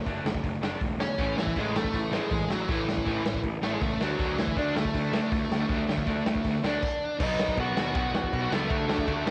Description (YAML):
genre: punk rock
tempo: 160 BPM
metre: 4/4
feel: straight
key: unclear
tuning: A4 = 441 Hz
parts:
  - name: distorted electric guitar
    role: riff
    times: 0.0-9.3 s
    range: A2 to D4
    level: -37 LUFS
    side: equal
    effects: distortion
  - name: fuzz picked electric bass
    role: bass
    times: 0.1-9.3 s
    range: E1 to F#2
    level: -36 LUFS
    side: equal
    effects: overdrive
  - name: raw garage drum kit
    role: drums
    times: 0.1-9.3 s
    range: crash cymbal, hi-hat, kick drum, ride cymbal, snare drum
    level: -33 LUFS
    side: equal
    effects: cassette tape
  - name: bluesy overdriven lead guitar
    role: melody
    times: 1.0-9.3 s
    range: E3 to F#5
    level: -33 LUFS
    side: equal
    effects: distortion, cassette tape, analog delay
  - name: crunchy overdriven guitar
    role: riff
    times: 1.2-9.3 s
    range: A2 to D4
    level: -37 LUFS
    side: equal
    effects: none
room: small room ambience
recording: home recording on cassette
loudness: -28 LUFS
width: mono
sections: 0.0-7.2 A section; 7.2-9.3 B section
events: stop 6.8-7.2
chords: 0.0 D/F#; 1.2 A5; 4.0 D; 7.2 B; 8.7 D5